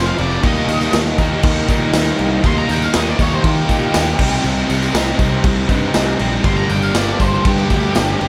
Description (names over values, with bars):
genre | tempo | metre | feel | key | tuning
classic rock | 120 BPM | 4/4 | straight | unclear | A4 = 442 Hz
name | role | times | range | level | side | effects
octave-fuzz lead guitar | melody | 0.0-8.3 s | G4 to C6 | -25 LUFS | equal | distortion
overdriven tonewheel organ | sustained chords | 0.0-8.3 s | A3 to Bb4 | -34 LUFS | equal | none
biting overdriven guitar | riff | 0.0-8.3 s | F2 to Eb4 | -27 LUFS | equal | tremolo
crunchy overdriven guitar | riff | 0.0-8.3 s | G2 to A4 | -26 LUFS | equal | none
overdriven electric guitar | riff | 0.0-8.3 s | F2 to Eb4 | -25 LUFS | equal | none
fuzz picked electric bass | bass | 0.0-8.3 s | F1 to Eb3 | -22 LUFS | equal | overdrive
tambourine | percussion | 0.1-8.1 s | none | -41 LUFS | equal | none
raw garage drum kit | drums | 0.2-8.3 s | crash cymbal, kick drum, snare drum | -20 LUFS | equal | none
room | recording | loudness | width
studio reverb | none | -16 LUFS | mono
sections
0.0-8.3 A section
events
lead electric guitar solo 0.0-8.3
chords
0.4 Eb; 4.2 Cm7; 6.4 Gm